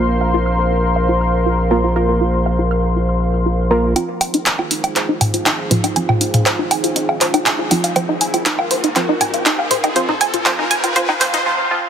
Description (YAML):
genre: melodic techno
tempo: 120 BPM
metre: 4/4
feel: straight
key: F minor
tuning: A4 = 441 Hz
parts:
  - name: dark analog pad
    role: sustained chords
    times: 0.0-11.4 s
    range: Eb4 to C6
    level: -22 LUFS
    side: equal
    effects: chorus
  - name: tight sequenced synth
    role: arpeggios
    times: 0.0-11.4 s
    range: Eb4 to F6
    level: -20 LUFS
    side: equal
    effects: chorus, phaser, tape echo
  - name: filtered dub chord stab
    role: stabs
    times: 0.0-11.9 s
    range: F3 to Bb4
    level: -22 LUFS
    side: right 2 dB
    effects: chorus, tape echo
  - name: gritty driven synth bass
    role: bass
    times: 0.0-3.9 s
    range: Bb1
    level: -18 LUFS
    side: equal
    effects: tube saturation
  - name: techno drum kit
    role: drums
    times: 4.0-11.4 s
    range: handclaps, hi-hat, toms, woodblock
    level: -18 LUFS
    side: right 1 dB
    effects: overdrive
  - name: riser and swell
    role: sound effects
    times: 5.6-11.9 s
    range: none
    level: -25 LUFS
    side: equal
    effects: none
room: moderate huge ambient reverb, RT60 4.1 s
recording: dense, heavily limited modern master, high-pass filter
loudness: -14 LUFS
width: side -8 dB against mid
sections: 0.0-4.0 A section; 4.0-11.9 B section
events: filter sweep on synth stab 0.0-4.0, 4.0-11.9; build-up 4.0-11.9; filter sweep on synth arpeggio sound 4.0-11.9; filter sweep on analog synth pad 4.0-11.9; riser 5.6-11.5; swell 11.0-11.9; break 11.5-11.9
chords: 0.0 Bbsus2; 4.0 Fm7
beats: 0.46 0.96 1.46 | 1.96 2.46 2.96 3.46 | 3.96 4.46 4.96 5.46 | 5.96 6.46 6.96 7.46 | 7.96 8.46 8.96 9.46 | 9.96 10.46 10.96 11.46